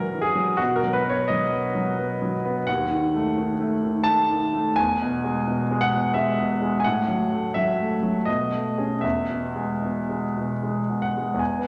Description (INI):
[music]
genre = classical, romantic character piece for solo piano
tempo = 75-88 BPM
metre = 3/4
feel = rubato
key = E major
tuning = A4 = 440 Hz
[part]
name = clear grand piano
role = solo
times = 0.0-11.7 s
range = D#2 to A5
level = -24 LUFS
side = equal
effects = none
[sound]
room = wet recital hall reverb, RT60 1.5 s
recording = none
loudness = -24 LUFS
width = mono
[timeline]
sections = 0.0-11.4 A section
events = none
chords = 0.0 F#7/A#; 0.6 B; 2.7 D#dim; 4.8 E; 6.8 F#m/A; 8.3 B13; 9.0 E